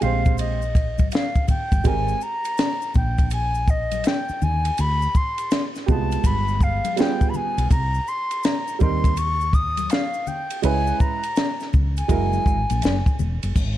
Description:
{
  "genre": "hip hop, jazz-hop",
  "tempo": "82 BPM",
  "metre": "4/4",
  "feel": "swing 65% on 16ths",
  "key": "Ab major",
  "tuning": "A4 = 439 Hz",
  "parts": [
    { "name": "concert flute", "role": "melody", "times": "0.0-13.2 s", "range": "Eb5 to Eb6", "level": "-26 LUFS", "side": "left 2 dB", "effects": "none" },
    { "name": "warm upright piano", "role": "accompaniment", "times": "0.0-12.6 s", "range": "G3 to C5", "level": "-26 LUFS", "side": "right 12 dB", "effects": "none" },
    { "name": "woody fretless electric bass", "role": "bass", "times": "0.0-13.8 s", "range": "Fb1 to Eb2", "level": "-23 LUFS", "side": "equal", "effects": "none" },
    { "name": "compact cocktail drum kit", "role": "drums", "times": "0.0-13.8 s", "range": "crash cymbal, hi-hat, kick drum, ride cymbal, snare drum", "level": "-22 LUFS", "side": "equal", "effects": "vintage 12-bit sampler grit" },
    { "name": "congas and maracas", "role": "percussion", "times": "0.0-13.8 s", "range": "none", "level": "-35 LUFS", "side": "left 12 dB", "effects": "none" }
  ],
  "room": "small room ambience",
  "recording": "dark, warm production",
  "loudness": "-19 LUFS",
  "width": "side -13 dB against mid",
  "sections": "0.0-1.9 A section; 1.9-13.6 B section",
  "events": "none",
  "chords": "0.0 Abmaj9; 1.9 Abmaj7sus2; 4.8 Dm7; 6.2 G7b9; 7.7 Cm7; 10.6 Dbm7; 12.1 Gb9",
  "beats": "0.39 1.12 | 1.85 2.58 3.31 4.05 | 4.78 5.51 6.24 6.97 | 7.70 8.44 9.17 9.90 | 10.63 11.36 12.10 12.83 | 13.56"
}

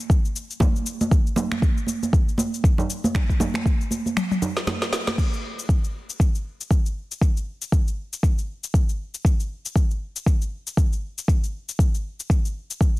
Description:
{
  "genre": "house",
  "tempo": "118 BPM",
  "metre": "4/4",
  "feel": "swing 58% on 16ths",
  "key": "none",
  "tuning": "none",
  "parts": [
    { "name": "afro-pop drum kit", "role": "drums", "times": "0.0-13.0 s", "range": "crash cymbal, finger snaps, shaker, snare drum, toms", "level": "-29 LUFS", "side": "left 2 dB", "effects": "studio reverb" },
    { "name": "electronic kick drum", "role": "drums", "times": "0.1-12.9 s", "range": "none", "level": "-19 LUFS", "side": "equal", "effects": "studio reverb" },
    { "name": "congas", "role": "percussion", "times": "0.6-5.2 s", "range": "none", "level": "-26 LUFS", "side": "right 2 dB", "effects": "none" }
  ],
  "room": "little or no reverb",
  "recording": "dense, heavily limited modern master",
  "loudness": "-21 LUFS",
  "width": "side -19 dB against mid",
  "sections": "0.0-5.2 A section; 5.2-13.0 B section",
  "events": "kick drops out 4.2-5.2; drum fill 4.2-5.2",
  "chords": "none",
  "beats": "0.10 0.60 | 1.11 1.62 2.13 2.64 | 3.15 3.66 4.16 4.67 | 5.18 5.69 6.20 6.71 | 7.21 7.72 8.23 8.74 | 9.25 9.76 10.27 10.77 | 11.28 11.79 12.30 12.81"
}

